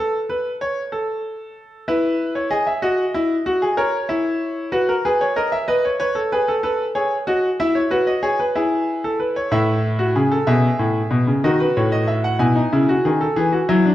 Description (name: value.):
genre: classical, baroque-style 3-part fugue for grand piano.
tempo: 63 BPM (dotted quarters).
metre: 12/8.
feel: straight.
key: unclear.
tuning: A4 = 440 Hz.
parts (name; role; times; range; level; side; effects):
bright concert grand piano; solo; 0.0-13.9 s; A2 to G#5; -17 LUFS; equal; none.
room: wet recital hall reverb, RT60 1.6 s.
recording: dark, warm production.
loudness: -17 LUFS.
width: side -13 dB against mid.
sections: 0.0-13.9 A section.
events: none.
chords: 0.0 N.C.; 1.9 E; 3.8 F#7 (rootless); 5.7 B7; 7.6 E; 9.5 A; 11.4 B7; 13.4 E7.